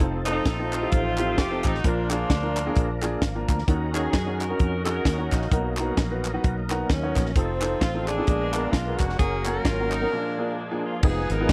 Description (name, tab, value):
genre	uptempo gospel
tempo	131 BPM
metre	4/4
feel	swing 58% on 8ths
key	unclear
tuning	A4 = 440 Hz
part	clear upright piano	accompaniment	0.0-11.5 s	Bb2 to Bb5	-32 LUFS	equal	none
part	overdriven tonewheel organ	sustained chords	0.0-11.5 s	F3 to Bb4	-35 LUFS	equal	fast rotary speaker, chorus vibrato
part	fingered electric bass	bass	0.0-11.5 s	F1 to Gb2	-31 LUFS	equal	none
part	tight funk drum kit	drums	0.0-11.5 s	crash cymbal, hi-hat, kick drum, snare drum	-25 LUFS	equal	none
part	breathy tenor saxophone	melody	0.3-3.0, 6.9-10.8 s	C4 to Bb4	-32 LUFS	equal	none
part	bright saxophone section	melody	0.3-11.5 s	F3 to Bb4	-34 LUFS	equal	none
part	group handclap	percussion	0.3-10.0 s	none	-36 LUFS	equal	none
room	small room ambience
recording	dry, close 1970s-style studio recording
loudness	-25 LUFS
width	mono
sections	0.0-11.0 A section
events	upright piano fill 2.8-3.7; break 10.1-11.0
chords	0.0 F7; 1.8 Bb; 3.7 Ebm7; 5.5 Bmaj7; 7.4 F7; 8.3 Bb7b9; 9.2 Gb; 10.1 Bb7